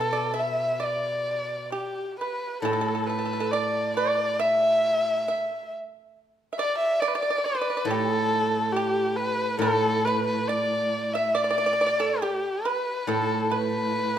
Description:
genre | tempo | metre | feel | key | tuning
chinese traditional, Chinese chamber ensemble | 69 BPM | 4/4 | rubato | unclear | A4 = 440 Hz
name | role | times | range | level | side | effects
warm erhu | melody | 0.0-14.2 s | G4 to E5 | -25 LUFS | left 1 dB | none
pipa | second line | 0.0-14.1 s | G4 to E5 | -29 LUFS | right 4 dB | none
steel-string zither | accompaniment | 0.0-14.2 s | A2 to B2 | -29 LUFS | equal | none
room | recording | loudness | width
moderate recital hall reverb, RT60 1.3 s | minimal, uncompressed stereo recording | -23 LUFS | side -10 dB against mid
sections
0.0-2.6 A section; 2.6-14.2 B section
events
none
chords
none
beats
0.80 1.73 | 2.65 3.55 4.43 5.30 | 6.16 7.01 7.87 8.74 | 9.61 10.48 11.34 12.21 | 13.09 13.97

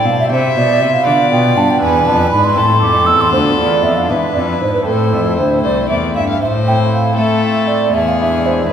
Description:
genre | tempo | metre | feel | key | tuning
classical, baroque-style sonata movement with continuo | 79 BPM (dotted quarters) | 6/8 | straight | A minor | A4 = 440 Hz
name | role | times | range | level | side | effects
rich violin | melody | 0.0-8.7 s | G#4 to F5 | -19 LUFS | left 5 dB | none
baroque flute | second line | 0.0-8.7 s | A4 to E6 | -15 LUFS | right 3 dB | none
pipe organ, cornet | accompaniment | 0.0-8.7 s | C2 to C5 | -19 LUFS | left 1 dB | none
rich cello | bass | 0.0-8.7 s | C2 to A3 | -17 LUFS | equal | none
room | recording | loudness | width
wet church reverb, RT60 2.6 s | recorded in a church or concert hall | -11 LUFS | side -8 dB against mid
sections
0.0-6.4 A section; 6.4-8.7 B section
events
none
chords
0.0 C; 1.1 Bdim; 1.8 E7; 2.6 Am; 3.3 Bdim/D; 4.1 E7; 4.9 Am; 7.9 E7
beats
| 0.32 1.07 | 1.83 2.58 | 3.34 4.10 | 4.87 5.64 | 6.41 7.18 | 7.94 8.70

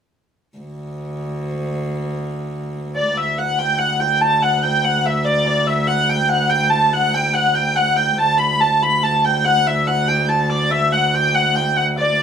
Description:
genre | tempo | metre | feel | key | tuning
medieval dance | 142 BPM | 3/4 | straight | D major | A4 = 441 Hz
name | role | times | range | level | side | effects
clear viola da gamba | drone | 0.6-12.2 s | D2 | -22 LUFS | equal | none
warm hurdy-gurdy | melody | 3.0-12.2 s | D5 to B5 | -16 LUFS | equal | none
room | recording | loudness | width
moderate studio reverb, RT60 0.7 s | band playing live in one room | -15 LUFS | side -7 dB against mid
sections
0.6-3.1 A section; 3.1-12.2 B section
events
none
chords
none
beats
| 0.59 1.01 1.44 | 1.86 2.28 2.71 | 3.13 3.55 3.97 | 4.39 4.82 5.24 | 5.66 6.08 6.51 | 6.93 7.35 7.77 | 8.20 8.62 9.04 | 9.46 9.88 10.31 | 10.73 11.15 11.57 | 11.99

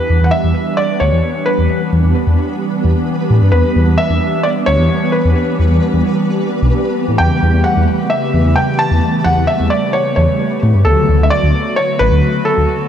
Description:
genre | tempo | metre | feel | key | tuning
IDM | 131 BPM | 4/4 | straight | E dorian | A4 = 438 Hz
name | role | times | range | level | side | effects
felt-muted upright piano | melody | 0.0-12.9 s | A4 to A5 | -17 LUFS | equal | vintage 12-bit sampler grit, ping-pong delay
hollow soft pad | sustained chords | 0.0-12.9 s | C#3 to G4 | -17 LUFS | right 1 dB | ensemble chorus
flickering grainy texture | texture | 0.7-12.9 s | B3 to B4 | -24 LUFS | equal | built-in reverb
dark detuned saw bass | bass | 0.1-12.7 s | A1 to A2 | -13 LUFS | equal | tube saturation
room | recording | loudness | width
light reverb | dark, warm production | -11 LUFS | side -9 dB against mid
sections
0.0-12.9 A section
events
none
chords
0.0 Em7; 7.2 A7/E; 10.9 Dmaj7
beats
0.33 0.78 1.24 | 1.70 2.16 2.62 3.07 | 3.53 3.99 4.45 4.91 | 5.36 5.82 6.28 6.74 | 7.20 7.65 8.11 8.57 | 9.03 9.49 9.94 10.40 | 10.86 11.32 11.78 12.23 | 12.69

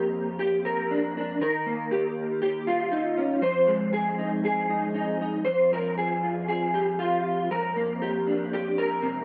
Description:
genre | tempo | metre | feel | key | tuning
folk, solo fingerstyle acoustic guitar | 119 BPM | 4/4 | rubato | unclear | A4 = 441 Hz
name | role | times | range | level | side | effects
electric guitar through a small old amp | solo | 0.0-9.2 s | F2 to C5 | -26 LUFS | equal | ensemble chorus
room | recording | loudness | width
light reverb | dark, warm production | -26 LUFS | mono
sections
0.0-9.2 A section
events
none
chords
0.0 Gm/F; 1.4 Eb; 3.4 Ab/F; 5.5 N.C.; 7.5 Gm/F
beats
0.40 0.90 | 1.41 1.91 2.41 2.91 | 3.41 3.92 4.43 4.94 | 5.46 5.97 6.49 6.99 | 7.50 8.01 8.51 9.01

